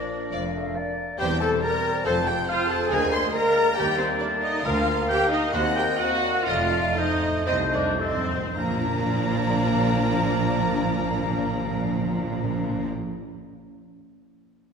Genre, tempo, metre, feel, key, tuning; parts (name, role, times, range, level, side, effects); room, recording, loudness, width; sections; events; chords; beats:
quick classical-period movement for symphony orchestra; 104-142 BPM; 4/4; rubato; Bb major; A4 = 437 Hz
mellow clarinet; second line; 0.0-12.9 s; D4 to F5; -32 LUFS; left 3 dB
mellow large flute ensemble; second line; 0.0-12.9 s; Bb4 to Bb5; -33 LUFS; right 1 dB
rich chamber violin section; second line; 0.0-12.9 s; C5 to C6; -31 LUFS; left 2 dB
warm oboe; second line; 0.0-12.9 s; Bb4 to C6; -32 LUFS; left 1 dB
mellow bassoon; accompaniment; 0.0-12.9 s; F3 to Bb3; -35 LUFS; equal
rich chamber viola section; accompaniment; 0.0-12.9 s; Bb3 to C5; -27 LUFS; right 1 dB
dark French horn section; sustained chords; 0.0-12.9 s; F3 to Eb4; -34 LUFS; left 3 dB
timpani; percussion; 0.0-2.7, 6.5-12.9 s; F2 to Bb2; -29 LUFS; right 1 dB
rich studio violin section; melody; 0.3-12.9 s; Bb4 to Eb5; -36 LUFS; left 3 dB
rich chamber cello section; bass; 0.3-12.9 s; C2 to Bb2; -32 LUFS; right 2 dB
rich chamber double bass section; bass; 0.3-12.9 s; E1 to Eb2; -33 LUFS; right 4 dB
wet concert hall reverb, RT60 2.0 s; minimal, uncompressed stereo recording; -21 LUFS; side -6 dB against mid
0.0-8.6 A section; 8.6-13.0 B section
slowing down 3.8-8.6; timpani fill 6.5-8.6
0.0 Bb; 1.2 C7/E; 2.1 F5; 2.9 Bb7/D; 3.8 Eb; 4.6 Bb/D; 5.5 Cm7b5/Eb; 6.5 F7; 8.6 Bb
0.33 0.76 | 1.19 1.63 2.05 2.49 | 2.91 3.35 3.78 4.21 | 4.65 5.09 5.54 6.01 | 6.49 6.98 7.48 8.01 | 8.57 9.12 9.67 10.22 | 10.77 11.31 11.85 12.40